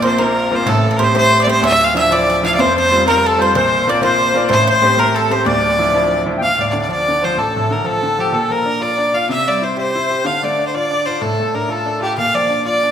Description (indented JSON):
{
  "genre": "celtic folk, Celtic jig",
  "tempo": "125 BPM (dotted quarters)",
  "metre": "6/8",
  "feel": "straight",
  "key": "D minor",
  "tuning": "A4 = 439 Hz",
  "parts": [
    { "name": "clear fiddle", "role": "melody", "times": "0.0-12.9 s", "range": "G4 to F5", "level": "-16 LUFS", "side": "equal", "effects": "none" },
    { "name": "bowl-back mandolin", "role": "second line", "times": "0.0-6.2 s", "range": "A4 to F5", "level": "-20 LUFS", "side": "right 5 dB", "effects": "none" },
    { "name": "bright grand piano", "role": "accompaniment", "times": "0.0-12.9 s", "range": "D1 to G4", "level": "-18 LUFS", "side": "equal", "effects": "none" },
    { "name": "accordion", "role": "second line", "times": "2.6-12.9 s", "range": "G4 to G5", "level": "-20 LUFS", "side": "left 4 dB", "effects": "none" }
  ],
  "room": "wet recital hall reverb, RT60 1.5 s",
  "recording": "minimal, uncompressed stereo recording",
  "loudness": "-13 LUFS",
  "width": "side -8 dB against mid",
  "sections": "0.0-6.4 A section; 6.4-12.9 B section",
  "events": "none",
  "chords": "0.0 Bbsus2; 0.7 Am7; 1.6 Dmadd9; 2.6 Fsus2; 3.5 Bbsus2; 4.5 Am7; 5.5 Dmadd9; 6.4 Dm; 8.3 Bb; 9.3 C; 10.2 Dm; 12.2 Bb"
}